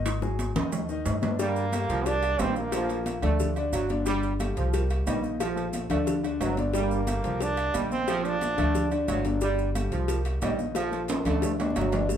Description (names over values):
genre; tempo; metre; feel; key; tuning
latin, salsa; 179 BPM; 4/4; straight; G minor; A4 = 440 Hz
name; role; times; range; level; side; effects
clear grand piano; accompaniment; 0.0-12.2 s; D3 to Eb5; -31 LUFS; left 3 dB; none
upright bass; bass; 0.0-12.2 s; G1 to G2; -30 LUFS; equal; none
bongos and cowbell; percussion; 0.1-12.2 s; none; -36 LUFS; left 5 dB; none
congas; percussion; 0.1-12.2 s; none; -35 LUFS; equal; none
maracas; percussion; 0.1-12.2 s; none; -44 LUFS; right 4 dB; none
timbales and agogo bells; percussion; 0.1-12.0 s; none; -35 LUFS; right 2 dB; none
brilliant trombone; melody; 1.4-3.2, 6.7-8.9 s; Bb3 to D4; -29 LUFS; right 3 dB; none
clear trombone section; second line; 1.4-11.9 s; F3 to A3; -32 LUFS; right 5 dB; none
room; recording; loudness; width
moderate large studio reverb, RT60 0.9 s; band playing live in one room; -24 LUFS; side -9 dB against mid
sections
0.0-1.4 A section; 1.4-12.1 B section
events
drum fill 0.1-1.4, 11.1-12.1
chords
0.1 Ab5; 1.4 Gmadd9; 2.1 Cm7; 2.7 Bbmaj7; 3.4 D; 4.1 Gsus2; 4.7 Cm7; 5.4 Bbmaj7; 6.1 D; 6.7 Gmadd9; 7.4 Cm7; 8.1 Bbmaj7; 8.8 D; 9.4 Gsus2; 10.1 Cm7; 10.8 Bbmaj7; 11.4 D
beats
| 0.06 0.39 0.72 1.06 | 1.39 1.73 2.06 2.39 | 2.73 3.06 3.40 3.73 | 4.07 4.40 4.73 5.07 | 5.40 5.74 6.07 6.41 | 6.74 7.08 7.41 7.75 | 8.08 8.41 8.75 9.09 | 9.42 9.75 10.09 10.42 | 10.76 11.09 11.43 11.76 | 12.10